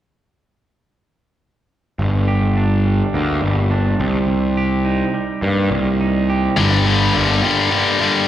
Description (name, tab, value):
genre	rock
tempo	105 BPM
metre	4/4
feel	straight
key	G minor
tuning	A4 = 441 Hz
part	clean electric guitar	arpeggios	2.0-8.3 s	G2 to G4	-23 LUFS	right 6 dB	none
part	fuzz picked electric bass	bass	2.0-7.4 s	G1 to G2	-16 LUFS	equal	overdrive
part	tight distorted guitar	riff	6.6-8.3 s	G2 to G3	-14 LUFS	left 4 dB	distortion
room	digital ambience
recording	live gig heard through the venue's PA, recital hall reverb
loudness	-15 LUFS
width	side -11 dB against mid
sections	2.0-6.6 A section; 6.6-8.3 B section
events	none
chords	2.0 Gm; 4.0 Cm7; 6.6 Gm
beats	| 1.98 2.56 3.13 3.71 | 4.28 4.85 5.43 6.00 | 6.57 7.15 7.72